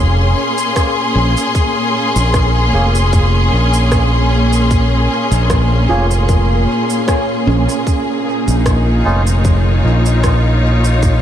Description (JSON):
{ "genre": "ambient dub", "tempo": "76 BPM", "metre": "4/4", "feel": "swing 54% on 16ths", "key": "Bb minor", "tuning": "A4 = 440 Hz", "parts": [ { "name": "clear symphonic string section", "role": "sustained chords", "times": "0.0-11.2 s", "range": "Bb2 to C6", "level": "-16 LUFS", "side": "left 1 dB", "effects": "none" }, { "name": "handpan", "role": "arpeggios", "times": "0.0-10.0 s", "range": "Db4 to Db5", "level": "-23 LUFS", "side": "right 4 dB", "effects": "dub echo" }, { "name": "modern bright fingered electric bass", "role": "bass", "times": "0.0-11.2 s", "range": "F1 to Bb1", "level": "-13 LUFS", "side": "equal", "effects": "none" }, { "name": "electronic cabasa and rim click", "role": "drums", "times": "0.6-11.2 s", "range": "none", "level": "-26 LUFS", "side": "equal", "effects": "dub echo" }, { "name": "electronic kick drum", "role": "drums", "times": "0.8-11.2 s", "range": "none", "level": "-16 LUFS", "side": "equal", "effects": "none" }, { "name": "melodica", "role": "stabs", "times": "2.7-9.2 s", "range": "Bb3 to Ab4", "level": "-26 LUFS", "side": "right 1 dB", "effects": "dub echo" } ], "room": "moderate huge ambient reverb, RT60 7.2 s", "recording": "dreamy mix soaked in reverb", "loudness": "-11 LUFS", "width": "side -10 dB against mid", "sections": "0.0-11.2 A section", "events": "none", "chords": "0.0 Bbm7; 7.9 Dbadd9" }